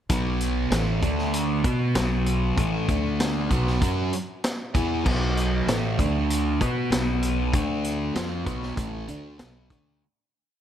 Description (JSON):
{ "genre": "psychedelic rock", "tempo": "97 BPM", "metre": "4/4", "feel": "straight", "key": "B minor", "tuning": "A4 = 440 Hz", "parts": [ { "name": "fuzz guitar", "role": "riff", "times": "0.1-10.0 s", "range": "A2 to B4", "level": "-25 LUFS", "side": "equal", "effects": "distortion, phaser" }, { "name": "upright bass", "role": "bass", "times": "0.1-10.0 s", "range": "A1 to B2", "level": "-28 LUFS", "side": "equal", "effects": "none" }, { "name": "vintage drum kit", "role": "drums", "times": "0.1-9.8 s", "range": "crash cymbal, hi-hat, kick drum, snare drum", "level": "-28 LUFS", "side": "equal", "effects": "none" } ], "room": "light reverb", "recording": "none", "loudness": "-22 LUFS", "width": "side -10 dB against mid", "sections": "0.1-10.0 riff", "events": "fade-out 7.5-10.0", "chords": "0.1 B5; 1.0 D5; 1.6 B5; 2.9 D5; 3.5 B5; 6.0 D5; 6.6 B5; 7.5 D5; 8.2 Bm", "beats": "| 0.10 0.72 1.33 1.95 | 2.57 3.19 3.81 4.43 | 5.05 5.68 6.30 6.92 | 7.54 8.16 8.78 9.40" }